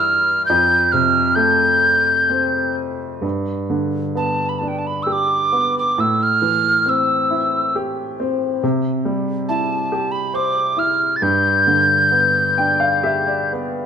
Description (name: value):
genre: celtic folk, Celtic slow air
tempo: 67 BPM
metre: 3/4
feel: uneven beats, rubato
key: G mixolydian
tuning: A4 = 440 Hz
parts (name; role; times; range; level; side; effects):
- mellow hollow wooden whistle; melody; 0.0-13.5 s; G5 to A6; -16 LUFS; equal; none
- clear upright piano; accompaniment; 0.0-13.9 s; F2 to G5; -20 LUFS; equal; none
room: moderate recital hall reverb, RT60 1.3 s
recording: minimal, uncompressed stereo recording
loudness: -15 LUFS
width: side -8 dB against mid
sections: 0.0-3.2 A section; 3.2-13.9 B section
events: upright piano fill 12.1-13.9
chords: 0.5 Fadd9; 3.2 G; 6.0 Am7; 8.6 C; 11.2 G